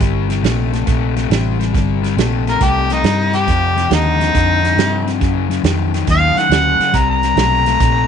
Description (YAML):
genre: electric blues shuffle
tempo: 138 BPM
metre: 4/4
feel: swing 68% on 8ths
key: unclear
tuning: A4 = 440 Hz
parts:
  - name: overdriven semi-hollow guitar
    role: riff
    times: 0.0-8.1 s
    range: F2 to A3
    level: -19 LUFS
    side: left 14 dB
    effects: none
  - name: vintage muted fingered electric bass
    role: bass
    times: 0.0-8.1 s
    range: G1 to G2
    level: -18 LUFS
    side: right 1 dB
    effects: none
  - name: natural country drum kit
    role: drums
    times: 0.0-7.9 s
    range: hi-hat, kick drum, snare drum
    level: -20 LUFS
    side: right 5 dB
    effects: none
  - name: warm harmonica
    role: melody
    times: 2.5-8.1 s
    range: Eb4 to Bb5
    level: -15 LUFS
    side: equal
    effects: overdrive
room: studio reverb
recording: 1960s-style stereo, nothing above 10.3 kHz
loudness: -13 LUFS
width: side -7 dB against mid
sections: 0.0-8.1 A section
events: harmonica solo 0.0-8.1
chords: 0.0 C7(no3); 3.5 F5; 5.2 F#5; 6.9 C5